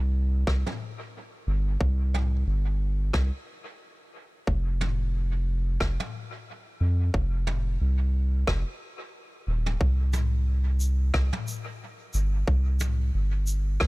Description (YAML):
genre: ambient dub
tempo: 90 BPM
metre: 4/4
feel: swing 58% on 16ths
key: unclear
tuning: A4 = 442 Hz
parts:
  - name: soft dub sub bass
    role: bass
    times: 0.0-13.9 s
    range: Eb1 to F2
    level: -24 LUFS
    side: equal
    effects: tube saturation
  - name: electronic kick drum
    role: drums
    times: 0.5-13.9 s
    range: none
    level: -27 LUFS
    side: equal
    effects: overdrive
  - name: vintage brush drum kit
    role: drums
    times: 0.5-13.9 s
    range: rim click, shaker, toms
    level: -35 LUFS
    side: left 1 dB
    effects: dub echo
room: little or no reverb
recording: none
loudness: -24 LUFS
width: side -22 dB against mid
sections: 0.0-13.9 A section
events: none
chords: none